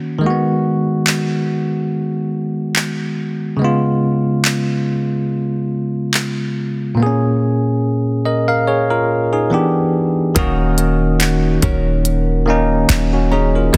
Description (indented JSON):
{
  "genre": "contemporary R&B",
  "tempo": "71 BPM",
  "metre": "4/4",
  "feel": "swing 54% on 16ths",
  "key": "Eb minor",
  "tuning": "A4 = 440 Hz",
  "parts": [
    { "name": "barky tine electric piano", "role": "accompaniment", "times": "0.0-13.8 s", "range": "Bb2 to F5", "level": "-18 LUFS", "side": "equal", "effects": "none" },
    { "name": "trap drum kit", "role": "drums", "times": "1.1-13.8 s", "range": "handclaps, hi-hat, kick drum", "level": "-22 LUFS", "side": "equal", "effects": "none" },
    { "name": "nylon-string guitar", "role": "arpeggios", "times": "10.4-13.8 s", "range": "Eb3 to Bb4", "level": "-24 LUFS", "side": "equal", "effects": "delay" },
    { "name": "clean 808-style bass", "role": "bass", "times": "10.4-13.8 s", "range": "Eb1", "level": "-20 LUFS", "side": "equal", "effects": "none" },
    { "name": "soft round pluck", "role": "texture", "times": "10.4-13.8 s", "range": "Bb5 to Eb6", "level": "-35 LUFS", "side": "equal", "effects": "chorus, delay" }
  ],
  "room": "light reverb, digital ambience",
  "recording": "dense, heavily limited modern master",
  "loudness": "-17 LUFS",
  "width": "mono",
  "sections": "0.0-10.4 A section; 10.4-13.8 B section",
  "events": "none",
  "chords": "0.2 Abm7/Eb; 3.6 Db7; 7.0 Bbm7; 9.5 Em7; 10.4 Ebm7",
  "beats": "| 0.22 1.06 1.91 2.75 | 3.60 4.44 5.29 6.13 | 6.98 7.82 8.67 9.51 | 10.36 11.20 12.05 12.89 | 13.74"
}